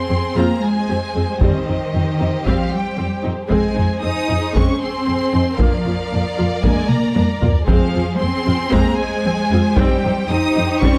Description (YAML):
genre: cinematic, epic orchestral film score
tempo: 115 BPM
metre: 4/4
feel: straight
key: F minor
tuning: A4 = 442 Hz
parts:
  - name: warm symphonic violin section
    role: melody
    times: 0.0-11.0 s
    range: Eb5 to Eb6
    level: -29 LUFS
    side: equal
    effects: none
  - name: warm symphonic violin section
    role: second line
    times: 0.0-11.0 s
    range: G4 to D5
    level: -28 LUFS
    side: equal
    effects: none
  - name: rich symphonic cello section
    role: bass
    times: 0.0-11.0 s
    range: Eb3 to Eb4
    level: -24 LUFS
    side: equal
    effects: none
  - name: warm symphonic viola section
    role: accompaniment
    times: 0.1-11.0 s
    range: G3 to Ab4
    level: -26 LUFS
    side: equal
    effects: none
  - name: warm studio double bass section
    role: bass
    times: 0.1-10.9 s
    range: F2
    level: -24 LUFS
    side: equal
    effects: none
  - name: dark French horn section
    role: sustained chords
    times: 0.3-11.0 s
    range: C4 to Bb4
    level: -30 LUFS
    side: equal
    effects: none
  - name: taiko ensemble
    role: drums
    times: 1.4-11.0 s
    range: none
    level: -21 LUFS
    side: equal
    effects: none
room: light reverb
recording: close, detailed microphones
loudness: -18 LUFS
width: mono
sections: 0.0-11.0 A section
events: drum fill 6.9-7.7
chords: 0.0 Fm; 1.4 Cm/F; 3.5 Ab/F; 5.6 Bb/F; 7.7 Fm; 9.8 Cm/F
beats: 0.37 0.89 | 1.42 1.94 2.46 2.98 | 3.50 4.03 4.55 5.07 | 5.60 6.12 6.64 7.17 | 7.69 8.21 8.74 9.26 | 9.78 10.30 10.83